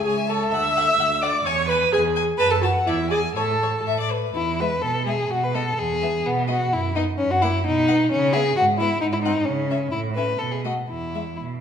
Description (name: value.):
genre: quick classical-period movement for string quartet.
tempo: 119-134 BPM.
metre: 2/4.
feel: rubato.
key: E major from 4.4 s.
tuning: A4 = 441 Hz.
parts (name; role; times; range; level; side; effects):
clear violin; melody; 0.0-11.2 s; B4 to A5; -30 LUFS; left 8 dB; none.
warm violin; second line; 0.0-11.4 s; B3 to E6; -23 LUFS; left 2 dB; none.
warm viola; accompaniment; 0.0-11.2 s; G#3 to E5; -23 LUFS; right 1 dB; none.
warm cello; bass; 0.1-11.6 s; C#2 to C#3; -27 LUFS; right 4 dB; none.
room: wet recital hall reverb, RT60 1.4 s.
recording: minimal, uncompressed stereo recording.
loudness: -19 LUFS.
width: side -8 dB against mid.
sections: 0.0-4.4 A section; 4.4-11.6 B section.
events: none.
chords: 0.0 Amaj7/C#; 0.5 Dadd9; 1.5 E; 2.4 F#m; 2.9 E7; 3.4 N.C.; 4.4 E; 5.3 B7(no3); 5.8 E; 6.3 B; 7.2 F#7; 7.7 B; 8.1 C#m7; 9.0 G#; 9.5 N.C.; 9.9 A; 10.4 B7(no3); 10.9 E5.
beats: 0.06 | 0.54 1.00 | 1.46 1.93 | 2.39 2.87 | 3.37 3.86 | 4.36 4.83 | 5.31 5.78 | 6.25 6.72 | 7.20 7.66 | 8.12 8.57 | 9.03 9.48 | 9.93 10.40 | 10.89 11.40.